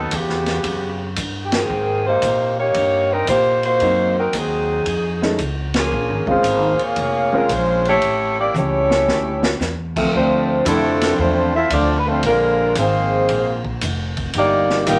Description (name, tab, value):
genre	jazz, big band swing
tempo	114 BPM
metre	4/4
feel	swing 68% on 8ths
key	D minor from 10.1 s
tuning	A4 = 441 Hz
part	mellow saxophone section	melody	0.0-15.0 s	Db3 to E5	-20 LUFS	equal	none
part	upright bass	bass	0.0-15.0 s	F1 to Bb2	-27 LUFS	equal	none
part	vintage drum kit	drums	0.1-15.0 s	crash cymbal, hi-hat, kick drum, ride cymbal, snare drum, toms	-28 LUFS	equal	none
part	warm grand piano	accompaniment	3.8-11.5, 14.9-15.0 s	D2 to E5	-23 LUFS	equal	none
part	warm trombone section	second line	8.6-15.0 s	C3 to E4	-24 LUFS	equal	none
room	wet club reverb, RT60 0.8 s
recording	none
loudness	-18 LUFS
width	mono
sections	0.0-10.1 A section; 10.1-15.0 B section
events	band accent 1.4, 5.7; drum fill 8.6-9.6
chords	0.0 Eb7#9b13 (rootless); 1.7 Abmaj9; 3.8 Cm7b5; 4.9 F7alt; 5.9 Bbm7; 8.0 A7; 10.1 Dm7; 12.2 Bb7; 14.4 Ebmaj7